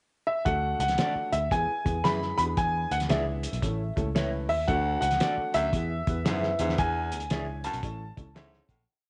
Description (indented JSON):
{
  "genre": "uptempo 1960s-style soul",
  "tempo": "114 BPM",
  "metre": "4/4",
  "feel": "swing 64% on 8ths",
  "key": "E mixolydian",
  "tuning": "A4 = 440 Hz",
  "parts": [
    { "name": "clear baby grand piano", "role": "melody", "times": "0.3-8.3 s", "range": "E5 to B5", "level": "-31 LUFS", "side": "equal", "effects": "none" },
    { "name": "warm upright piano", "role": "accompaniment", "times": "0.5-8.9 s", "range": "G#3 to F#5", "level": "-38 LUFS", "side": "equal", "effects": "none" },
    { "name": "vintage muted picked electric bass", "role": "bass", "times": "0.5-8.8 s", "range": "A1 to F#2", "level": "-35 LUFS", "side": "equal", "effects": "none" },
    { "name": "cloth-damped thuddy drum kit", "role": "drums", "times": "0.5-8.8 s", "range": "hi-hat, kick drum, snare drum", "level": "-33 LUFS", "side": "equal", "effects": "none" },
    { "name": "electric guitar through a small old amp", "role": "stabs", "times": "1.0-8.5 s", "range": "F#4 to E5", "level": "-39 LUFS", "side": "equal", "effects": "none" },
    { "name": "raspy baritone saxophone", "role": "riff", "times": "4.7-8.8 s", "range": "D2 to A2", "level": "-39 LUFS", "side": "equal", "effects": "none" }
  ],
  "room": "light reverb, small room ambience",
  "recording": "nothing above 10.8 kHz",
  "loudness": "-28 LUFS",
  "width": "mono",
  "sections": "0.0-0.5 pickup bar; 0.5-8.9 verse",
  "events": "fade-out 6.8-8.9; upright piano fill 8.1-8.9",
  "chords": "0.5 D; 1.5 E; 2.3 E7; 3.6 A; 4.7 D; 5.7 E; 6.5 E7; 7.8 A"
}